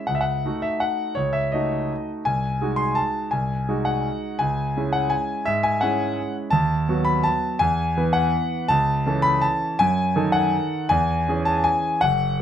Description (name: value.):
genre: classical, piano waltz.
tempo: 151-177 BPM.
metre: 3/4.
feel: rubato.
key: C# minor.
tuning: A4 = 440 Hz.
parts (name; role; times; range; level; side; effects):
clear concert grand piano; solo; 0.0-12.4 s; F#1 to B#5; -20 LUFS; equal; none.
room: light reverb.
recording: minimal, uncompressed stereo recording.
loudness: -20 LUFS.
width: side -9 dB against mid.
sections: 0.0-12.4 A section.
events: none.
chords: 0.1 D#m7b5/C#; 2.3 G#7/B#; 4.4 C#m; 6.5 B/D#; 7.6 E; 8.7 A/C#; 9.8 D#dim/F#; 10.9 C#m/E.